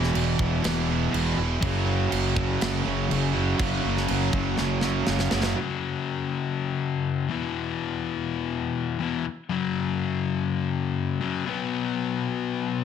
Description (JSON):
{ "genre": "hard rock", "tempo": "122 BPM", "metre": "4/4", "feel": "straight", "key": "unclear", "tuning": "A4 = 440 Hz", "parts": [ { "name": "distorted electric guitar", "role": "riff", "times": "0.0-5.6 s", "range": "E2 to F#3", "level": "-30 LUFS", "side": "right 11 dB", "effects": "distortion" }, { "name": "overdriven electric guitar", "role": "riff", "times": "0.0-12.8 s", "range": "E2 to B3", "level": "-26 LUFS", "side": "left 7 dB", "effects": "none" }, { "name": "tight distorted guitar", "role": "riff", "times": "0.0-5.6 s", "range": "E2 to F#3", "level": "-31 LUFS", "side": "right 2 dB", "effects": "distortion" }, { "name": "fuzz fingered electric bass", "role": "bass", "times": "0.0-5.5 s", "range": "E1 to F#1", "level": "-28 LUFS", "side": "right 1 dB", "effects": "overdrive" }, { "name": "tight metal drum kit", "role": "drums", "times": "0.0-5.6 s", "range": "crash cymbal, kick drum, snare drum", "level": "-30 LUFS", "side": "right 2 dB", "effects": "none" } ], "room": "moderate large studio reverb, RT60 0.9 s, studio reverb", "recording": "none", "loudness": "-24 LUFS", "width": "side -8 dB against mid", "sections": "0.0-5.6 A section; 5.6-12.8 A section", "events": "drum fill 4.6-5.6", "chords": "0.0 E5; 1.6 F#5; 7.3 E5; 9.5 F#5; 11.5 B5", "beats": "0.15 0.65 1.14 | 1.63 2.12 2.62 3.11 | 3.60 4.09 4.58 5.08 | 5.57 6.06 6.55 7.04 | 7.53 8.03 8.52 9.01 | 9.50 9.99 10.48 10.97 | 11.46 11.95 12.45" }